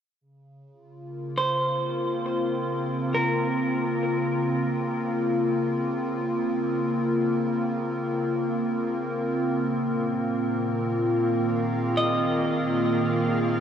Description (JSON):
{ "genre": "ambient", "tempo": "free time", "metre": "none", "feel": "none", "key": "Bb minor", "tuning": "A4 = 436 Hz", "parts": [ { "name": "evolving wavetable pad", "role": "sustained chords", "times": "1.0-13.6 s", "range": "Bb2 to Bb4", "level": "-24 LUFS", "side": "equal", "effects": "chorus, built-in reverb" }, { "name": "clean electric guitar", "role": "arpeggios", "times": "1.4-13.6 s", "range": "Bb4 to Eb5", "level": "-29 LUFS", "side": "right 1 dB", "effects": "tape echo" }, { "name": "organ-like drone", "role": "drone", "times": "10.9-13.6 s", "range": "Bb3 to F4", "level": "-30 LUFS", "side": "right 1 dB", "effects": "ensemble chorus, built-in reverb" } ], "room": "wet huge ambient reverb, RT60 8.2 s", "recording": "cassette tape", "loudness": "-23 LUFS", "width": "side -8 dB against mid", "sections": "0.2-13.6 A section", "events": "filter sweep on ambient pad 0.2-13.6", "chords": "0.2 Bbmadd9; 9.6 Abadd9/Bb" }